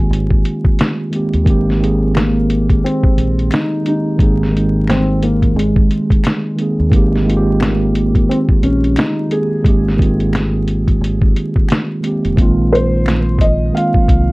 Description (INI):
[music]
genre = lo-fi hip hop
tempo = 88 BPM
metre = 4/4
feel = swing 62% on 16ths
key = Ab major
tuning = A4 = 440 Hz
[part]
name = felt-muted upright piano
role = melody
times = 0.0-14.3 s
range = Ab3 to Ab5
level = -19 LUFS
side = left 1 dB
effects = plate reverb
[part]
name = mellow tine electric piano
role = accompaniment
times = 0.0-14.3 s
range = Eb3 to Ab4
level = -16 LUFS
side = right 1 dB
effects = medium stereo tremolo
[part]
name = deep dub fingered electric bass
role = bass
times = 0.0-14.3 s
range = F1 to Eb2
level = -18 LUFS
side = equal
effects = none
[part]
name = lo-fi sampler-style drum kit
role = drums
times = 0.1-14.3 s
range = hi-hat, kick drum, snare drum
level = -14 LUFS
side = equal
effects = vintage 12-bit sampler grit
[part]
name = finger snaps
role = percussion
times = 2.1-13.3 s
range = none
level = -31 LUFS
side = left 3 dB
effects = none
[sound]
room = light reverb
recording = vinyl crackle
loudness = -12 LUFS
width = side -22 dB against mid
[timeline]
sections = 0.0-1.5 A section; 1.5-12.4 A section; 12.4-14.3 B section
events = none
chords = 0.0 Abmaj9; 12.4 Bb9sus4